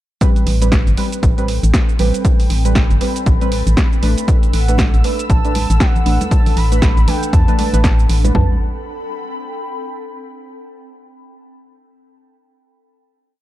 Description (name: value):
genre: deep house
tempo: 118 BPM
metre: 4/4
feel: swing 59% on 16ths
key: A dorian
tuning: A4 = 441 Hz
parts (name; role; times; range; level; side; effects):
- deep mellow chord stab; stabs; 0.2-8.5 s; G3 to B4; -22 LUFS; right 2 dB; chorus, sidechain pumping, ping-pong delay
- punchy analog drum machine; drums; 0.2-8.5 s; kick drum, toms; -15 LUFS; equal; none
- punchy analog drum machine; drums; 0.2-8.3 s; hi-hat, shaker, snare drum; -22 LUFS; right 1 dB; none
- ethereal airy pad; texture; 1.1-10.3 s; C4 to B5; -28 LUFS; left 2 dB; ensemble chorus, built-in reverb, phaser, sidechain pumping
- organ-like FM bass; bass; 0.5-8.6 s; G1 to E2; -15 LUFS; equal; sidechain pumping
- analog string pad; texture; 4.3-8.4 s; E6; -33 LUFS; right 1 dB; ensemble chorus, sidechain pumping
- warm velvety synth lead; melody; 4.5-8.6 s; F#5 to B5; -26 LUFS; equal; chorus, digital delay
- congas; percussion; 4.8-8.3 s; none; -26 LUFS; right 3 dB; none
room: little or no reverb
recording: dark, warm production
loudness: -12 LUFS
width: side -15 dB against mid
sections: 0.2-8.3 drop; 8.3-10.4 final chord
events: drop 0.2-8.3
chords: 0.2 Am9; 4.3 Bm7/A; 8.3 Am9